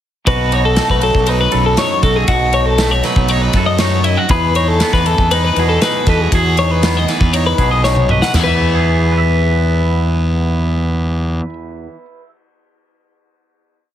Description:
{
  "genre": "math rock and midwest emo",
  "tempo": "119 BPM",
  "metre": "4/4",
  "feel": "straight",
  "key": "E major",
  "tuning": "A4 = 440 Hz",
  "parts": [
    { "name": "twangy electric guitar", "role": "accompaniment", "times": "0.3-12.3 s", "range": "E2 to E5", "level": "-20 LUFS", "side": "right 7 dB", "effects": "none" },
    { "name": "twelve-string electric guitar", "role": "arpeggios", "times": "0.3-11.5 s", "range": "E4 to F#5", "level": "-17 LUFS", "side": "left 5 dB", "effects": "spring reverb" },
    { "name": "fuzz fingered electric bass", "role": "bass", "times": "0.3-11.4 s", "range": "B1 to F#2", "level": "-16 LUFS", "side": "equal", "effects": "overdrive" },
    { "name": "modern studio drum kit", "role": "drums", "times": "0.3-8.5 s", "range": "crash cymbal, kick drum, ride cymbal, snare drum, toms", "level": "-19 LUFS", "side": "equal", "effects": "none" }
  ],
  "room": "light reverb",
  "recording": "heavily compressed radio sound, multiband compression, lossy compression artefacts",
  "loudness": "-12 LUFS",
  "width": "side -11 dB against mid",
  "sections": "0.3-8.3 A section; 8.3-12.4 final chord",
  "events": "drum fill 7.8-8.3",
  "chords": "0.3 B9; 8.3 E"
}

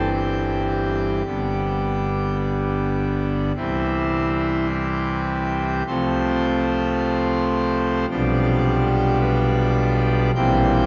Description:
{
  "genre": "classical, chorale-style piece for pipe organ",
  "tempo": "53 BPM",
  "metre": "4/4",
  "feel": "straight",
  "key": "C major",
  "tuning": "A4 = 439 Hz",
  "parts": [
    { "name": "pipe organ, full organ", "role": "solo", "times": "0.0-10.9 s", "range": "G1 to G5", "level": "-21 LUFS", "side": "equal", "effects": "none" }
  ],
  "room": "wet cathedral reverb, RT60 4.8 s",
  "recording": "nothing above 7.6 kHz",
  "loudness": "-21 LUFS",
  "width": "mono",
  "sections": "0.0-10.9 A section",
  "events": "none",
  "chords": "0.0 C/G; 1.3 G; 3.6 C; 5.9 F/C; 8.1 G7/B; 10.3 C7/Bb"
}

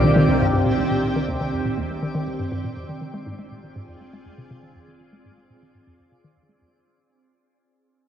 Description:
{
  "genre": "ambient, sequencer-driven space music",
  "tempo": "121 BPM",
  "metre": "4/4",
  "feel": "straight",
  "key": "F dorian",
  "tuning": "A4 = 440 Hz",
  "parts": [
    { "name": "evolving wavetable pad", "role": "sustained chords", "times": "0.0-6.7 s", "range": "C3 to G5", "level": "-23 LUFS", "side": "right 1 dB", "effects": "ensemble chorus, built-in reverb, phaser, cassette tape" },
    { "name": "concert harp", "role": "arpeggios", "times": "0.0-0.9 s", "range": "none", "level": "barely audible", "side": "none", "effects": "none" },
    { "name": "hollow square pluck", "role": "riff", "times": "0.0-6.7 s", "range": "C2 to Ab3", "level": "-24 LUFS", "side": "left 1 dB", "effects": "chorus, cassette tape, tape echo" },
    { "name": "round analog bass", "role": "bass", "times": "0.0-6.7 s", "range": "F1 to C2", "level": "-34 LUFS", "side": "equal", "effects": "tube saturation" },
    { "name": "twinkling granular texture", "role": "texture", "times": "0.0-6.7 s", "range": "D4 to D5", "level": "-30 LUFS", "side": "right 1 dB", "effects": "built-in reverb, cassette tape" }
  ],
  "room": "wet lush hall reverb, RT60 2.6 s",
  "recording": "home recording on cassette",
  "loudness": "-20 LUFS",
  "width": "side -9 dB against mid",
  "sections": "0.0-6.7 A section",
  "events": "fade-out on analog synth bass 0.0-6.7; fade-out 0.0-6.7; filter sweep on synth arpeggio sound 0.0-6.7",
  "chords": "0.0 Cm; 2.8 Fm"
}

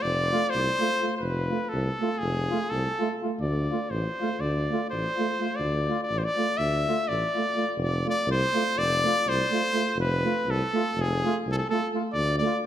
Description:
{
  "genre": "balkan folk, Balkan brass band",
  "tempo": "248 BPM (eighths)",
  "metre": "9/8",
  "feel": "straight",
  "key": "unclear",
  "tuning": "A4 = 440 Hz",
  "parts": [
    { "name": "bright trumpet", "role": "melody", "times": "0.0-12.6 s", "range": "G#4 to E5", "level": "-26 LUFS", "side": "left 1 dB", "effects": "none" },
    { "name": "mellow tuba", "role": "bass", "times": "0.0-12.4 s", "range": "F1 to D2", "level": "-30 LUFS", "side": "equal", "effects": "none" },
    { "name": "clear trombone", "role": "accompaniment", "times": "0.3-12.5 s", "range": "F4", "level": "-35 LUFS", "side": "left 5 dB", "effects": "none" },
    { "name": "mellow euphonium", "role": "accompaniment", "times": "0.3-12.5 s", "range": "A3", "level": "-32 LUFS", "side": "right 6 dB", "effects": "none" }
  ],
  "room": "wet recital hall reverb, RT60 1.7 s",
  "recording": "none",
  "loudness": "-24 LUFS",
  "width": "side -10 dB against mid",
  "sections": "0.0-7.8 A section; 7.8-12.7 A section",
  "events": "none",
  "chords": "0.0 F; 3.4 Dm; 7.8 F; 12.1 Dm"
}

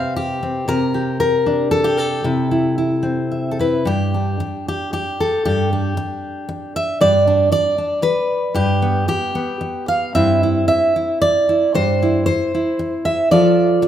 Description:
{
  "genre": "folk, solo fingerstyle acoustic guitar",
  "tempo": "115 BPM",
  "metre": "3/4",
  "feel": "rubato",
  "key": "unclear",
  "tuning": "A4 = 439 Hz",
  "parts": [
    { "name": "fingerpicked steel-string acoustic guitar", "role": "solo", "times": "0.0-13.9 s", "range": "G2 to F5", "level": "-16 LUFS", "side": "equal", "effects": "none" }
  ],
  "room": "moderate concert hall reverb, RT60 1.6 s",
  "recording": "minimal, uncompressed stereo recording",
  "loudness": "-15 LUFS",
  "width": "side -10 dB against mid",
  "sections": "0.0-3.8 A section; 3.8-13.9 B section",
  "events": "none",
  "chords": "0.0 Cmaj7(no3); 0.7 Gm/C; 2.2 C6; 3.8 G; 10.1 C/G; 13.3 F"
}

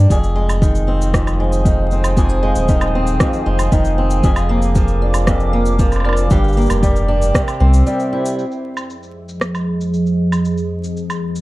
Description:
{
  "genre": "folktronica",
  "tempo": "116 BPM",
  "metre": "4/4",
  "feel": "straight",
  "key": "F dorian",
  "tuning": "A4 = 441 Hz",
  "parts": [
    { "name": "fingerpicked swing-style acoustic guitar", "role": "arpeggios", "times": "0.0-8.9 s", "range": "F2 to Ab4", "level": "-19 LUFS", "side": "equal", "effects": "tape echo" },
    { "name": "warm sub bass", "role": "bass", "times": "0.0-7.8 s", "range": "Eb1 to C2", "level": "-16 LUFS", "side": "equal", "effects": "none" },
    { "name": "warbly tape-like pad", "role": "sustained chords", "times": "0.8-11.4 s", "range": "F2 to E6", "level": "-22 LUFS", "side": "right 1 dB", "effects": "chorus, built-in reverb" },
    { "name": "electronic kick drum", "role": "drums", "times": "0.1-7.4 s", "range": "none", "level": "-16 LUFS", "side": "equal", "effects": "none" },
    { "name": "electronic shaker, woodblock and rim click", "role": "drums", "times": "0.1-11.4 s", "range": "none", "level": "-25 LUFS", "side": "right 1 dB", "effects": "low-pass filter on perc, low-pass filter on snare, low-pass filter on room" }
  ],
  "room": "little or no reverb",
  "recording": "dry, close 1970s-style studio recording, vinyl crackle",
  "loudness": "-14 LUFS",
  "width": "side -18 dB against mid",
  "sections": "0.0-8.4 A section; 8.4-11.4 B section",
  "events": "break 7.9-8.4; filter sweep on ambient pad 8.4-11.4",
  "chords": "0.1 Fm7; 4.2 Bb7/F; 6.3 Gm; 7.3 C; 8.4 Fm7"
}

